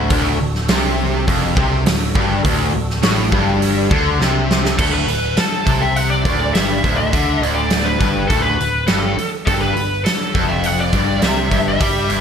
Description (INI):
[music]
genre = hard rock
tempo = 103 BPM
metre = 4/4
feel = straight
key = D mixolydian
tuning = A4 = 440 Hz
[part]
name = percussive tonewheel organ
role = sustained chords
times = 0.0-4.8 s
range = D4 to A4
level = -31 LUFS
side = equal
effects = none
[part]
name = cranked stack guitar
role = riff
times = 0.0-12.2 s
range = D2 to G3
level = -21 LUFS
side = left 11 dB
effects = overdrive, ensemble chorus
[part]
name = overdriven electric guitar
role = riff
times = 0.0-12.2 s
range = D2 to G3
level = -22 LUFS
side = right 10 dB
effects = harmonic tremolo
[part]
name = overdriven picked electric bass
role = bass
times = 0.0-12.2 s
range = D1 to G2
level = -22 LUFS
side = equal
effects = none
[part]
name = big rock drum kit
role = drums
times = 0.1-12.2 s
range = crash cymbal, hi-hat, kick drum, snare drum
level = -19 LUFS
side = equal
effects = gated reverb
[part]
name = lead guitar through a small cranked amp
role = melody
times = 4.8-12.2 s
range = A4 to F#5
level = -20 LUFS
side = equal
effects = overdrive, lush chorus, digital delay
[sound]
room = light reverb, studio reverb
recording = bright 1980s-style digital production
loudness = -14 LUFS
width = side -7 dB against mid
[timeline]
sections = 0.0-4.8 A section; 4.8-12.2 B section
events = drum fill 4.2-4.8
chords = 0.0 D; 4.8 D13sus4; 9.5 Fmaj9